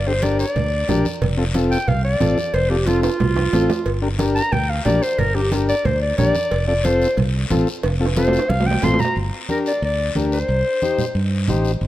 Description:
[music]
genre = latin, cumbia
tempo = 181 BPM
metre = 4/4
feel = straight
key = G minor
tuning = A4 = 437 Hz
[part]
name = warm clarinet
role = melody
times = 0.0-11.3 s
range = F4 to C6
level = -22 LUFS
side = equal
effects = none
[part]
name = fingered electric bass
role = bass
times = 0.0-11.9 s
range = F1 to G2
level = -21 LUFS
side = equal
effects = none
[part]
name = combo organ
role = accompaniment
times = 0.1-11.7 s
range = C4 to C5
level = -23 LUFS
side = left 2 dB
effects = none
[part]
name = congas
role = percussion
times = 0.1-11.9 s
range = none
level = -25 LUFS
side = right 3 dB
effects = none
[part]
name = cowbell and timbales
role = percussion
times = 0.2-9.1 s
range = none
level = -27 LUFS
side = right 4 dB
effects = none
[part]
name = guiro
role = percussion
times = 0.2-11.9 s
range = none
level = -33 LUFS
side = left 5 dB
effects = none
[sound]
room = moderate plate reverb, RT60 3.0 s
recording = none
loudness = -17 LUFS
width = side -14 dB against mid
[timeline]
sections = 0.0-9.2 A section; 9.2-11.9 B section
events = clarinet solo 0.0-9.2; drum fill 3.0-3.9, 7.8-9.2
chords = 0.0 Gm; 1.2 F; 3.9 Gm; 6.5 F; 9.2 Gm; 10.5 Cm

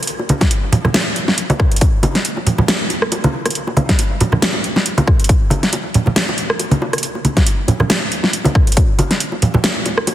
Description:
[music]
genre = dubstep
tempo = 138 BPM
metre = 4/4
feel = swing 55% on 16ths, half-time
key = none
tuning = none
[part]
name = dubstep drum kit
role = drums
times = 0.0-10.1 s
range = hi-hat, rim click, snare drum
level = -18 LUFS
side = equal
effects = none
[part]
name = bongos and congas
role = percussion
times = 0.2-10.1 s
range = none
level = -18 LUFS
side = right 1 dB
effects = dub echo
[part]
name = electronic kick drum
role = drums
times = 0.4-8.9 s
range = none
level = -14 LUFS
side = equal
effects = none
[sound]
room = moderate lush hall reverb, RT60 1.9 s, digital ambience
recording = heavily compressed radio sound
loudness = -13 LUFS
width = side -13 dB against mid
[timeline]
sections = 0.0-10.1 A section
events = none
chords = none

